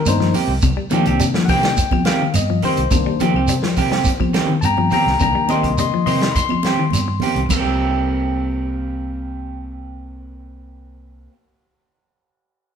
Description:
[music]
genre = afrobeat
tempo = 105 BPM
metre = 4/4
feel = straight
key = C minor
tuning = A4 = 440 Hz
[part]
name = barky tine electric piano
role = accompaniment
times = 0.0-7.5 s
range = Eb3 to C6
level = -21 LUFS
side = left 7 dB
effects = none
[part]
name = semi-hollow electric guitar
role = arpeggios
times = 0.0-7.7 s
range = C3 to G3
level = -23 LUFS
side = left 5 dB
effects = none
[part]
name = fingered electric bass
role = bass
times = 0.1-11.3 s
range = C2 to C3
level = -24 LUFS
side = equal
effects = none
[part]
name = vintage drum kit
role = drums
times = 0.1-7.6 s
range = crash cymbal, hi-hat, kick drum, snare drum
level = -23 LUFS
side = right 1 dB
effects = none
[part]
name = claves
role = percussion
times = 0.1-7.6 s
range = none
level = -34 LUFS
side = left 5 dB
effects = none
[part]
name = congas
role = percussion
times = 0.1-7.6 s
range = none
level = -27 LUFS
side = right 5 dB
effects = none
[part]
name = shekere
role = percussion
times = 0.1-7.6 s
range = none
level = -25 LUFS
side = right 4 dB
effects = none
[part]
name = electric guitar at the edge of break-up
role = stabs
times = 0.3-11.4 s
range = Eb3 to G4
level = -22 LUFS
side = right 5 dB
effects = none
[sound]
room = moderate large studio reverb, RT60 1.1 s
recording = band playing live in one room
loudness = -15 LUFS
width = side -7 dB against mid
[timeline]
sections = 0.0-7.5 A section; 7.5-9.8 B section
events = tine electric piano solo 0.0-7.5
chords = 0.0 Cm7; 7.5 C7(no3)

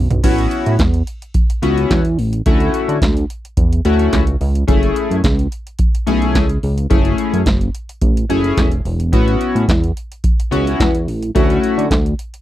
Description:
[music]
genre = early-eighties boogie funk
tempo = 108 BPM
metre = 4/4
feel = straight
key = unclear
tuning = A4 = 442 Hz
[part]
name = chorused synth bass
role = bass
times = 0.0-12.1 s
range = E1 to D3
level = -17 LUFS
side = equal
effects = none
[part]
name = electro analog drum machine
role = drums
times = 0.1-12.4 s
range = crash cymbal, handclaps, hi-hat, kick drum, snare drum, toms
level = -17 LUFS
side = equal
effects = none
[part]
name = chorused polysynth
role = accompaniment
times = 0.2-11.9 s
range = A3 to G#4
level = -17 LUFS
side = left 3 dB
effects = none
[sound]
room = little or no reverb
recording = dry, close 1970s-style studio recording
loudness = -14 LUFS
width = side -14 dB against mid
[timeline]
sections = 0.2-12.4 A section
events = drum fill 0.0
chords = 0.2 A69; 2.5 Dmaj7; 4.7 F#m7; 9.1 A69; 11.4 Dmaj7

